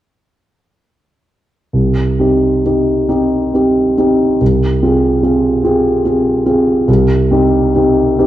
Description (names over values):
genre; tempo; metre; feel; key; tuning
classical; 43-49 BPM (dotted quarters); 6/8; rubato; C minor; A4 = 441 Hz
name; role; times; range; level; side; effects
dark concert grand piano; accompaniment; 1.7-8.3 s; C2 to Ab4; -10 LUFS; equal; none
room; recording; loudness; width
moderate recital hall reverb, RT60 1.6 s; dark, warm production; -10 LUFS; side -13 dB against mid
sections
1.7-8.3 A section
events
none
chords
1.7 Cm; 4.4 Fm/C; 6.9 Cm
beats
| 1.74 3.09 | 4.41 5.64 | 6.88 8.19